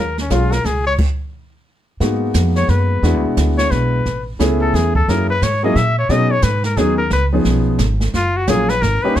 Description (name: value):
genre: jazz, small-group swing and bop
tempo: 176 BPM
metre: 3/4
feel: swing 62% on 8ths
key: unclear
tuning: A4 = 440 Hz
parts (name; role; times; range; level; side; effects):
- warm trumpet; melody; 0.0-9.2 s; Db4 to E5; -19 LUFS; left 2 dB; none
- upright bass; bass; 0.0-9.2 s; F#1 to B2; -18 LUFS; right 1 dB; none
- jazz brush drum kit; drums; 0.2-9.2 s; brushed snare drum, crash cymbal, hi-hat, kick drum, snare drum; -22 LUFS; right 1 dB; none
- warm concert grand piano; accompaniment; 0.3-9.2 s; E#3 to G#4; -19 LUFS; left 1 dB; none
room: light reverb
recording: dark, warm production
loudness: -14 LUFS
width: side -11 dB against mid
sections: 0.0-2.0 A section; 2.0-9.2 B section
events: stop 1.0-2.0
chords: 0.0 Ebm11; 2.0 G#m9; 3.0 E7; 4.1 Amaj9; 5.1 F#7; 6.1 B6; 7.1 C#7; 8.1 F#maj9